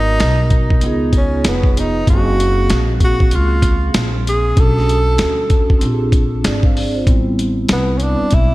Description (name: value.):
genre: hip hop, jazz-hop.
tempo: 96 BPM.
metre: 4/4.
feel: swing 61% on 16ths.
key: unclear.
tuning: A4 = 440 Hz.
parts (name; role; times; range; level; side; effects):
breathy tenor saxophone; melody; 0.0-8.5 s; B3 to A4; -20 LUFS; right 1 dB; diffuse ambient delay.
vibraphone with soft mallets; accompaniment; 0.0-8.5 s; G3 to E#5; -21 LUFS; right 1 dB; none.
upright bass; bass; 0.0-8.5 s; E#1 to D2; -18 LUFS; equal; none.
boom bap sampler-style drum kit; drums; 0.2-8.5 s; hi-hat, kick drum, snare drum; -15 LUFS; equal; none.
room: light reverb, small room reverb.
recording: none.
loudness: -12 LUFS.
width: side -18 dB against mid.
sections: 0.0-7.1 A section; 7.1-8.5 B section.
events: tenor saxophone solo 7.1-8.5.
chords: 0.0 G#m7; 0.8 C#9; 2.1 F#maj9#11; 4.6 Bm9; 5.8 Bb9; 7.1 Am9.